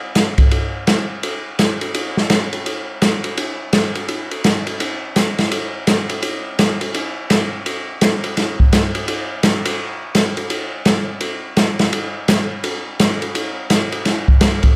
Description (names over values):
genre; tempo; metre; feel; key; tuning
jazz; 168 BPM; 4/4; swing 63% on 8ths; none; none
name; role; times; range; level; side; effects
open jazz drum kit; drums; 0.2-14.7 s; hi-hat, kick drum, ride cymbal, snare drum; -18 LUFS; equal; none
room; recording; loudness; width
light reverb; close, detailed microphones; -18 LUFS; mono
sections
0.0-14.8 A section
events
none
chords
none